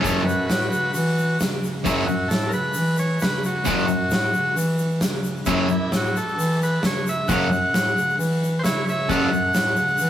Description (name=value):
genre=garage rock duo or trio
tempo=133 BPM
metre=4/4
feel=straight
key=F# minor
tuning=A4 = 437 Hz
part: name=overdriven combo organ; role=melody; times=0.0-10.1 s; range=C#4 to F#5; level=-24 LUFS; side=equal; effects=spring reverb, tape echo
part: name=fuzz guitar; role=riff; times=0.0-9.3 s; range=F#2 to F#3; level=-22 LUFS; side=left 1 dB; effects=distortion
part: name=warm bass clarinet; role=bass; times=0.0-10.1 s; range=F#2 to E3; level=-25 LUFS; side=equal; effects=none
part: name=oversized low-tuned drum kit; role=drums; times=0.0-10.1 s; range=crash cymbal, hi-hat, kick drum, snare drum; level=-26 LUFS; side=equal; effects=none
part: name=egg shaker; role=percussion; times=0.1-10.1 s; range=none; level=-38 LUFS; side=left 4 dB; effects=none
room=moderate studio reverb, RT60 0.6 s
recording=rough rehearsal-room recording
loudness=-19 LUFS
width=side -11 dB against mid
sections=0.0-10.1 A section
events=transistor combo organ solo 0.0-10.1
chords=0.0 F#m